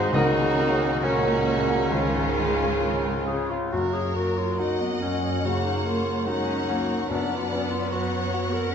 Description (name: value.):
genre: classical, romantic movement for piano and orchestra.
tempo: 64-76 BPM.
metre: 4/4.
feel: rubato.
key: F# major.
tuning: A4 = 435 Hz.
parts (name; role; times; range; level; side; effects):
clear concert grand piano; melody; 0.0-8.7 s; C#2 to F#5; -27 LUFS; equal; none.
rich studio violin section; melody; 0.0-8.7 s; E#4 to F#5; -33 LUFS; left 4 dB; none.
bright oboe; second line; 0.0-2.8 s; C#4 to D#4; -32 LUFS; right 1 dB; none.
clear clarinet; second line; 0.0-8.7 s; B3 to B#4; -32 LUFS; left 1 dB; none.
flute section; second line; 0.0-3.4 s; G#5 to B#5; -35 LUFS; right 1 dB; none.
rich symphonic violin section; second line; 0.0-8.7 s; B#3 to D#5; -34 LUFS; left 2 dB; none.
rich chamber viola section; accompaniment; 0.0-8.7 s; F#3 to A#3; -34 LUFS; left 1 dB; none.
warm bassoon; accompaniment; 0.0-3.4 s; E#3 to F#3; -32 LUFS; right 2 dB; none.
rich chamber double bass section; bass; 0.0-8.7 s; C#2 to F#2; -33 LUFS; right 3 dB; none.
warm chamber cello section; bass; 0.0-8.7 s; A#2 to C#4; -31 LUFS; right 2 dB; none.
dark French horn section; sustained chords; 0.1-7.4 s; C#3 to F#4; -33 LUFS; left 3 dB; none.
timpani; percussion; 0.1-8.3 s; F#2 to C#3; -33 LUFS; left 1 dB; none.
room: wet recital hall reverb, RT60 1.7 s.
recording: recorded in a church or concert hall, nothing above 8.0 kHz.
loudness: -22 LUFS.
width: side -7 dB against mid.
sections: 0.0-3.7 A section; 3.7-8.7 B section.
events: none.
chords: 0.1 F#/C#; 1.9 C#; 3.7 F#; 7.1 Bm/F#.